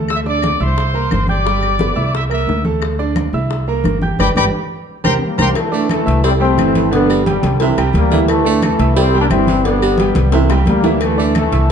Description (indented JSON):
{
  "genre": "latin, salsa",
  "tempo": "176 BPM",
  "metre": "4/4",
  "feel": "straight",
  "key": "unclear",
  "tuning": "A4 = 440 Hz",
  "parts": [
    { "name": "bright concert grand piano", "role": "accompaniment", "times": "0.0-11.7 s", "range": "D3 to G6", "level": "-19 LUFS", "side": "right 7 dB", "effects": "none" },
    { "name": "upright bass", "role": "bass", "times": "0.0-11.7 s", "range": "G1 to D2", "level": "-18 LUFS", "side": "equal", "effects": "none" },
    { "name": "clear trumpet section", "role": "melody", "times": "0.1-5.5 s", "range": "C5 to E6", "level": "-19 LUFS", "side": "left 2 dB", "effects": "none" },
    { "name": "bongos and cowbell", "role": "percussion", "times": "0.1-11.7 s", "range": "none", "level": "-25 LUFS", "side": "left 5 dB", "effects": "none" },
    { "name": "claves", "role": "percussion", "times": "0.1-11.5 s", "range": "none", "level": "-31 LUFS", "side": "left 10 dB", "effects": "none" },
    { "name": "congas", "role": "percussion", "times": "0.1-11.7 s", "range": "none", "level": "-22 LUFS", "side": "equal", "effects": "none" },
    { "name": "bright trombone section", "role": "melody", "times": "5.2-11.7 s", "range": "D3 to D4", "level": "-17 LUFS", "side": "left 4 dB", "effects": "none" },
    { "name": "breathy baritone saxophone", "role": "second line", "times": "5.7-11.5 s", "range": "C3 to A3", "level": "-21 LUFS", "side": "right 4 dB", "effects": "none" }
  ],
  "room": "wet large studio reverb, RT60 1.5 s",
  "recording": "dark, warm production, nothing above 10.7 kHz",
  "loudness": "-12 LUFS",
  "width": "side -7 dB against mid",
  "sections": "0.0-5.6 A section; 5.6-11.7 B section",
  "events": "band accent 4.2-5.6; drum fill 4.7-5.6, 10.3-11.0",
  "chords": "0.1 Dsus2; 0.8 C7; 1.5 G; 2.1 C7; 2.8 Dsus2; 3.5 C7; 4.2 G; 4.9 C5; 5.6 Dsus2; 6.2 C; 6.9 G; 7.6 C7; 8.3 Dsus2; 9.0 C; 9.7 G; 10.3 C7; 11.0 Dsus2"
}